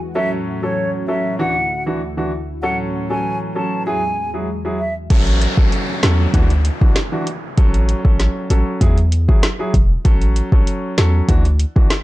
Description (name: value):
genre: dancehall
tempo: 97 BPM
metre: 4/4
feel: straight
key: A major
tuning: A4 = 441 Hz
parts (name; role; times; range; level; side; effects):
- warm analog pad; sustained chords; 0.0-5.1 s; D2 to F#4; -27 LUFS; left 1 dB; chorus, sidechain pumping
- downlifter; sound effects; 0.0-0.2, 5.1-10.1 s; none; -28 LUFS; equal; none
- hollow concert flute; melody; 0.2-4.9 s; C#5 to A5; -22 LUFS; equal; none
- clear baby grand piano; accompaniment; 0.2-11.9 s; E3 to A4; -23 LUFS; equal; sidechain pumping
- hard-hitting 808-style bass; bass; 5.1-11.9 s; E1 to E2; -16 LUFS; equal; none
- afro-pop drum kit; drums; 5.1-12.0 s; crash cymbal, hi-hat, kick drum, snare drum; -15 LUFS; equal; overdrive, vintage 12-bit sampler grit
room: little or no reverb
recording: dark, warm production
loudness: -15 LUFS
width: side -17 dB against mid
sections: 0.0-5.1 A section; 5.1-12.0 B section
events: none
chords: 0.2 A6; 1.4 Dadd9; 2.6 A6; 3.9 Eadd9; 5.1 A6; 6.3 Dadd9; 7.6 A6; 8.8 Eadd9; 10.1 A6; 11.3 Dadd9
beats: | 0.15 0.77 1.39 2.01 | 2.63 3.25 3.87 4.48 | 5.10 5.72 6.34 6.96 | 7.58 8.20 8.81 9.43 | 10.05 10.67 11.29 11.91